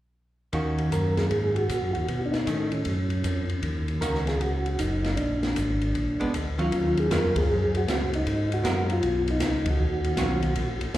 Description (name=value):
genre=soul jazz organ trio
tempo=156 BPM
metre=4/4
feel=swing 65% on 8ths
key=Eb minor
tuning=A4 = 440 Hz
part: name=archtop guitar, miked and amplified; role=accompaniment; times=0.5-10.4 s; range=Eb3 to Bb4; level=-29 LUFS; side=right 1 dB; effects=slapback echo
part: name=tonewheel organ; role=bass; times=0.5-11.0 s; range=Gb1 to B2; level=-27 LUFS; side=equal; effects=overdrive, chorus vibrato, slow rotary speaker
part: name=open jazz drum kit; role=drums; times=0.5-11.0 s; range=hi-hat, kick drum, ride cymbal, snare drum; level=-31 LUFS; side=left 1 dB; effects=none
part: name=percussive tonewheel organ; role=melody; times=0.9-10.8 s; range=C#4 to Bb4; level=-28 LUFS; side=equal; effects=slow rotary speaker, chorus vibrato, slapback echo
room=moderate club ambience, RT60 0.5 s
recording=live gig heard through the venue's PA, recital hall reverb, faint mains hum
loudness=-23 LUFS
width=side -14 dB against mid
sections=0.5-6.7 A section; 6.7-11.0 B section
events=band accent 7.3, 9.6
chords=0.5 Ebm7; 2.1 B9; 3.6 Ebm7; 5.2 Bb7; 6.7 Ebm9; 8.3 Abm9; 9.8 Ebm9